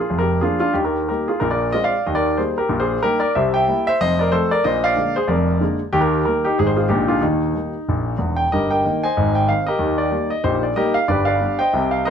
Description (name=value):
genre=jazz, stride piano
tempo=186 BPM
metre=4/4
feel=swing 60% on 8ths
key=Eb major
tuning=A4 = 440 Hz
part: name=clear grand piano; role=solo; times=0.0-12.1 s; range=Fb1 to Ab5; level=-17 LUFS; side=equal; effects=none
room=moderate club reverb, RT60 0.7 s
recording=none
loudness=-17 LUFS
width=side -8 dB against mid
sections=0.0-8.5 A section; 8.5-12.1 B section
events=none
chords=0.0 Bb7; 0.8 Eb; 1.4 Bb9; 2.1 Eb; 3.3 C7; 4.0 F; 4.6 Bb7; 5.3 Bb7/F; 5.9 Eb; 6.6 Ab; 6.9 Bb7; 7.2 Eb; 8.5 Eb/G; 9.2 Ab; 9.8 Eb; 11.1 G7